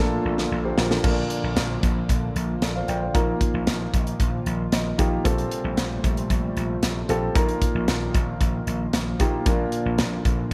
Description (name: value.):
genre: 1980s-style pop.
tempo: 114 BPM.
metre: 4/4.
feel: straight.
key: Bb major.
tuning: A4 = 442 Hz.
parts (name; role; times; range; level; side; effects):
warm grand piano; accompaniment; 0.0-10.5 s; Bb2 to G5; -30 LUFS; equal; none.
chorused pulse-width pad; sustained chords; 0.0-10.5 s; C3 to F4; -34 LUFS; equal; none.
vintage slap bass; bass; 0.0-10.5 s; Bb1; -30 LUFS; equal; none.
modern studio drum kit; drums; 0.4-10.5 s; crash cymbal, hi-hat, kick drum, snare drum; -26 LUFS; equal; gated reverb.
room: light reverb, small room reverb.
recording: none.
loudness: -24 LUFS.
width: mono.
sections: 0.0-1.0 A section; 1.0-10.5 B section.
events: drum fill 0.0-1.0; grand piano fill 4.5-5.2.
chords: 0.0 Bbmaj7; 3.1 Ebsus2/Bb; 5.2 Fadd9/Bb; 7.4 Ebsus2/Bb; 9.5 Bb.